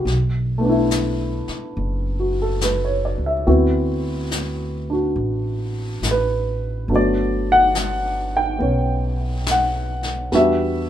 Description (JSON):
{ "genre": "jazz ballad", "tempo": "70 BPM", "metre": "4/4", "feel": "swing 67% on 8ths", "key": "D major", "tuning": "A4 = 441 Hz", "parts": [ { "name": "warm baby grand piano", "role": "accompaniment", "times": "0.0-10.9 s", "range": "F#3 to G5", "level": "-20 LUFS", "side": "equal", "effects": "none" }, { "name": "upright bass", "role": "bass", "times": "0.0-10.9 s", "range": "F#1 to E2", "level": "-23 LUFS", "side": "equal", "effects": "none" }, { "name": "jazz brush drum kit", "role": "drums", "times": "0.1-10.9 s", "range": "brushed snare drum, hi-hat, snare drum", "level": "-29 LUFS", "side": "left 4 dB", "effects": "none" } ], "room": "light reverb", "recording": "minimal, uncompressed stereo recording", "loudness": "-18 LUFS", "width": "side -11 dB against mid", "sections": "0.0-10.9 A section", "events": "none", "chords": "0.1 Bm11; 3.5 D13; 6.9 Gmaj7; 10.3 Em9" }